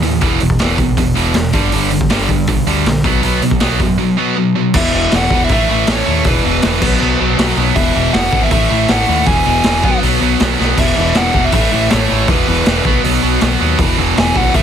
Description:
punk rock; 159 BPM; 4/4; straight; A4 = 440 Hz
sludgy distorted guitar; riff; 0.0-14.6 s; E2 to B3; -18 LUFS; left 14 dB; overdrive
tight distorted guitar; riff; 0.0-14.6 s; E2 to B3; -16 LUFS; right 14 dB; distortion
growling picked electric bass; bass; 0.0-14.6 s; E1 to G2; -19 LUFS; equal; overdrive
raw garage drum kit; drums; 0.0-14.6 s; crash cymbal, hi-hat, kick drum, snare drum; -17 LUFS; equal
biting lead guitar; melody; 4.8-14.6 s; B4 to G#5; -18 LUFS; left 1 dB; overdrive
little or no reverb; dense, heavily limited modern master; -11 LUFS; side -8 dB against mid
0.0-4.8 A section; 4.8-14.6 B section
drum fill 10.6
0.2 E5; 1.5 G5; 3.1 B5; 4.8 E5; 5.5 A; 6.3 E5; 6.8 B5; 7.8 E; 8.5 A5; 9.3 E; 9.8 B5; 10.8 E5; 11.5 A; 12.3 E5; 12.9 B; 13.8 E5

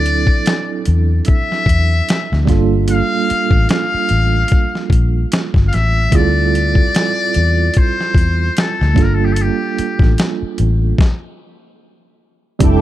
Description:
R&B, neo-soul; 74 BPM; 4/4; swing 57% on 16ths; G dorian; A4 = 440 Hz
trumpet with metal mute; melody; 0.0-10.2 s; G4 to F5; -19 LUFS; left 3 dB; tape echo
tine electric piano; accompaniment; 0.0-12.8 s; F#3 to A4; -20 LUFS; right 9 dB; medium tremolo
vintage muted fingered electric bass; bass; 0.0-12.8 s; F1 to E2; -15 LUFS; left 1 dB
boom bap sampler-style drum kit; drums; 0.1-12.8 s; hi-hat, kick drum, snare drum; -15 LUFS; left 1 dB
phased string machine; sustained chords; 12.6-12.8 s; A4 to D6; -21 LUFS; left 2 dB; ensemble chorus, phaser
little or no reverb; dark, warm production; -12 LUFS; side -14 dB against mid
0.0-12.6 A section
stop 11.0-12.6
0.0 D9; 2.5 Gm9; 6.1 Dm11; 9.0 Gm9; 11.8 N.C.

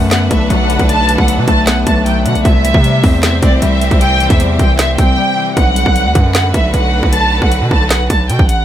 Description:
hip hop, trap; 154 BPM; 4/4; half-time; B phrygian; A4 = 440 Hz
warm studio violin section; melody; 0.0-8.6 s; D5 to A5; -16 LUFS; equal; tape echo
Celtic harp; accompaniment; 0.0-8.0 s; B2 to C5; -18 LUFS; left 4 dB
clear symphonic string section; sustained chords; 0.0-8.6 s; D3 to C5; -21 LUFS; right 2 dB
distorted 808-style bass; bass; 0.0-8.6 s; A1 to C3; -15 LUFS; right 1 dB; distortion
trap drum kit; drums; 0.1-8.6 s; handclaps, hi-hat, kick drum, snare drum; -13 LUFS; right 1 dB
little or no reverb; -9 LUFS; side -11 dB against mid
0.0-5.6 A section; 5.6-8.6 B section
break 5.2-5.6
0.0 Bm7; 2.5 C; 5.6 Bm7

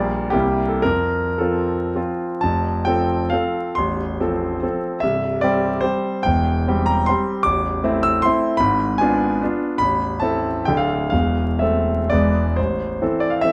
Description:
classical, romantic triple-time dance for piano with dotted rhythms; 103-169 BPM; 3/4; rubato; F major, A minor from 7.5 s; A4 = 440 Hz
bright concert grand piano; solo; 0.0-13.5 s; A0 to E6; -20 LUFS; equal
light reverb; close, detailed microphones, vinyl crackle; -20 LUFS; mono
0.0-2.5 A section; 2.5-12.6 B section
0.3 C7; 0.9 F; 3.8 F/A; 5.0 C; 6.3 C/E; 7.5 Am; 8.6 G#dim7; 9.8 Am; 10.7 Dm; 11.1 Am/E; 12.1 E; 12.6 Am

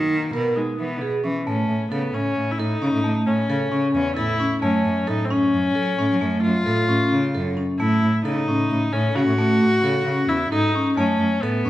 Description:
contemporary instrumental, chamber music in an uneven meter; 265 BPM (eighths); 7/8; straight; A4 = 440 Hz
warm viola; second line; 0.0-11.7 s; Ab3 to Gb4; -24 LUFS; left 2 dB
vibraphone with medium mallets; arpeggios; 0.0-11.7 s; A3 to Bb4; -22 LUFS; equal
clear cello; bass; 0.0-11.7 s; E2 to Gb3; -24 LUFS; equal
wet recital hall reverb, RT60 1.4 s; -19 LUFS; side -14 dB against mid
0.0-1.5 A section; 1.5-11.7 B section
0.0 Eb5; 0.8 E; 1.5 A; 4.6 Gbm; 7.8 A; 11.0 Gbm

